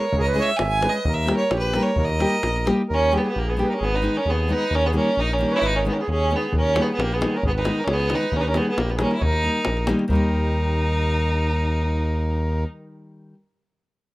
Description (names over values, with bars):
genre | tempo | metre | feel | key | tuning
balkan folk, Balkan wedding band | 133 BPM | 2/4 | swing 54% on 16ths | Eb phrygian dominant | A4 = 443 Hz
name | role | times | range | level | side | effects
clear fiddle | melody | 0.0-12.6 s | Bb3 to Ab5 | -24 LUFS | right 2 dB | none
accordion | second line | 0.0-12.6 s | G4 to Fb5 | -27 LUFS | right 2 dB | none
nylon-string guitar | accompaniment | 0.0-13.4 s | Eb3 to Ab4 | -26 LUFS | left 1 dB | none
smooth synth bass | bass | 0.1-12.6 s | Ab1 to Eb2 | -24 LUFS | equal | none
davul | percussion | 0.1-2.8, 6.5-10.3 s | none | -26 LUFS | left 1 dB | none
room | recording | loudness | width
moderate studio reverb, RT60 0.5 s | rough home demo mix | -19 LUFS | side -18 dB against mid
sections
0.0-2.9 A section; 2.9-10.1 B section; 10.1-11.9 C section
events
speeding up 0.0-11.9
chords
0.1 Dbm; 1.1 Eb; 3.8 Abm; 4.7 Eb; 5.6 Abm; 6.5 Eb; 7.4 Abm; 8.3 Eb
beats
| 0.13 0.59 | 1.05 1.51 | 1.97 2.43 | 2.89 3.35 | 3.81 4.26 | 4.72 5.17 | 5.63 6.08 | 6.53 6.98 | 7.43 7.88 | 8.33 8.78 | 9.22 9.67 | 10.12 10.56 | 11.00 11.45